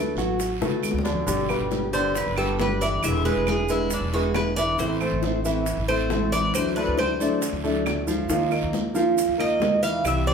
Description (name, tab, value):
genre	latin, Cuban son and guajira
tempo	137 BPM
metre	4/4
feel	straight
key	G major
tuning	A4 = 435 Hz
part	nylon-string guitar	accompaniment	0.0-10.3 s	B2 to Bb4	-28 LUFS	left 2 dB	none
part	clear grand piano	arpeggios	0.0-10.3 s	D3 to F#5	-26 LUFS	right 2 dB	none
part	upright bass	bass	0.0-10.3 s	E1 to D3	-30 LUFS	equal	none
part	congas	percussion	0.2-10.3 s	none	-34 LUFS	equal	none
part	guiro	percussion	0.2-10.3 s	none	-40 LUFS	right 5 dB	none
part	maracas	percussion	0.2-10.3 s	none	-37 LUFS	right 6 dB	none
part	bongos	percussion	0.4-10.3 s	none	-33 LUFS	left 3 dB	none
part	claves	percussion	0.8-10.3 s	none	-35 LUFS	right 3 dB	none
part	Cuban tres	melody	1.9-10.3 s	D4 to F5	-26 LUFS	equal	none
room	wet large studio reverb, RT60 0.8 s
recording	band playing live in one room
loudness	-21 LUFS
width	side -6 dB against mid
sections	0.0-1.3 A section; 1.3-10.3 B section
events	drum fill 0.6-1.3; Cuban tres solo 1.3-10.3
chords	0.0 D6; 1.3 G; 3.0 E7; 4.8 Am; 6.5 Dadd9; 8.3 Ebsus2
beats	0.40 0.84 | 1.28 1.72 2.15 2.60 | 3.03 3.47 3.91 4.35 | 4.79 5.23 5.67 6.11 | 6.55 6.98 7.42 7.86 | 8.30 8.74 9.18 9.61 | 10.05